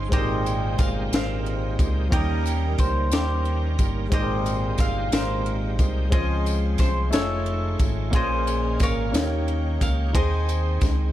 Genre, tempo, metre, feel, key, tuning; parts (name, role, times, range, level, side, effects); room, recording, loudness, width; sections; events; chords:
slow gospel; 60 BPM (dotted quarters); 6/8; straight; Ab major; A4 = 440 Hz
bowl-back mandolin; melody; 0.0-11.1 s; G4 to F5; -29 LUFS; equal
warm baby grand piano; accompaniment; 0.0-11.1 s; Bb2 to C6; -30 LUFS; left 2 dB
bright tonewheel organ; sustained chords; 0.0-11.1 s; G3 to C#5; -33 LUFS; right 5 dB; overdrive, chorus vibrato, slow rotary speaker
fingered electric bass; bass; 0.0-11.1 s; F1 to Eb2; -25 LUFS; equal
crisp fusion drum kit; drums; 0.1-11.0 s; kick drum, ride cymbal, snare drum; -25 LUFS; equal
tambourine; percussion; 0.5-11.1 s; -39 LUFS; left 5 dB
little or no reverb; dark, warm production; -21 LUFS; side -13 dB against mid
0.0-11.1 A section
0.1 Abmaj9; 2.1 Eb7; 4.1 Abmaj9; 6.1 Dbmaj7; 7.1 F7alt; 8.1 Bbm9; 9.1 Eb7; 10.1 Ab/Eb